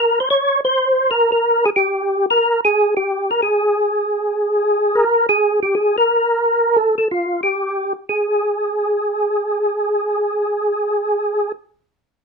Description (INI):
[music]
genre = jazz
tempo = 180 BPM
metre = 4/4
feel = swing 64% on 8ths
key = Ab major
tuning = A4 = 440 Hz
[part]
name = percussive tonewheel organ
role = solo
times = 0.0-11.5 s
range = F4 to Db5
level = -15 LUFS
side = equal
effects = slow rotary speaker, chorus vibrato
[sound]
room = light reverb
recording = none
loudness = -15 LUFS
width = side -4 dB against mid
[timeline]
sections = 0.0-5.4 A section; 5.4-8.1 B section; 8.1-10.8 C section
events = none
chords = none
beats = | 0.07 0.41 0.74 1.07 | 1.41 1.74 2.07 2.41 | 2.74 3.07 3.41 3.74 | 4.07 4.41 4.74 5.08 | 5.41 5.74 6.08 6.41 | 6.74 7.08 7.41 7.75 | 8.08 8.41 8.75 9.08 | 9.42 9.75 10.09 10.42